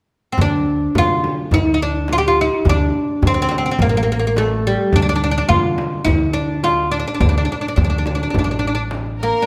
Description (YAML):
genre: Arabic maqam ensemble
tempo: 106 BPM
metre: 4/4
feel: straight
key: D maqam bayati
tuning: A4 = 439 Hz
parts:
  - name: oud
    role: melody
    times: 0.3-9.5 s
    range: G3 to G4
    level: -20 LUFS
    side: equal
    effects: none
  - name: upright bass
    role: bass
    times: 0.4-9.3 s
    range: A1 to D3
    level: -24 LUFS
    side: equal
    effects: none
  - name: darbuka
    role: percussion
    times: 0.4-9.1 s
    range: none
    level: -25 LUFS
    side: equal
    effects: none
  - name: frame drum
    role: percussion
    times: 0.4-9.0 s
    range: none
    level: -27 LUFS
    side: equal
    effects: none
  - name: rich studio violin section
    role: second line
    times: 9.2-9.5 s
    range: Bb4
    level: -21 LUFS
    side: equal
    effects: none
room: moderate recital hall reverb, RT60 1.6 s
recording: none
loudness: -17 LUFS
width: mono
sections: 0.4-9.5 A section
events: none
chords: none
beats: | 0.38 0.95 1.52 2.09 | 2.66 3.23 3.79 4.36 | 4.93 5.50 6.07 6.64 | 7.21 7.78 8.35 8.91